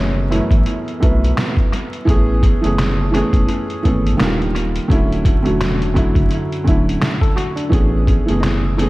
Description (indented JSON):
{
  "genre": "lo-fi hip hop",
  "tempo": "85 BPM",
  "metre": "4/4",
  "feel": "swing 58% on 16ths",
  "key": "A major",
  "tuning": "A4 = 440 Hz",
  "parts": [
    { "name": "nylon-string guitar", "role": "melody", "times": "0.0-1.0, 8.4-8.9 s", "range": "C#4 to E4", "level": "-30 LUFS", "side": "left 3 dB", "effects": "low-pass filter, analog delay" },
    { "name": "felt-muted upright piano", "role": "accompaniment", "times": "0.0-8.9 s", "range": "F#2 to B4", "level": "-18 LUFS", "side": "right 1 dB", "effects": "cassette tape, low-pass filter, analog delay" },
    { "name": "saturated sub bass", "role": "bass", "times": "0.0-8.9 s", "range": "D1 to B1", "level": "-19 LUFS", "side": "equal", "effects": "none" },
    { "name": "trip hop sampler-style drum kit", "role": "drums", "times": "0.3-8.9 s", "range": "finger snaps, hi-hat, kick drum, snare drum", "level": "-17 LUFS", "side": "equal", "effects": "analog delay" },
    { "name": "barky tine electric piano", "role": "second line", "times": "7.2-7.9 s", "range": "D4 to A4", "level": "-26 LUFS", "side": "left 2 dB", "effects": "medium stereo tremolo, low-pass filter, analog delay" }
  ],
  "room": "light reverb, digital ambience",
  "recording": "echo-heavy mix, vinyl crackle",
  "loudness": "-14 LUFS",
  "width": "side -19 dB against mid",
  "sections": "0.0-8.9 A section",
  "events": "none",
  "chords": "0.0 F#m11; 2.1 Amaj9; 4.2 D#maj7; 4.9 Dmaj7; 7.7 Amaj9"
}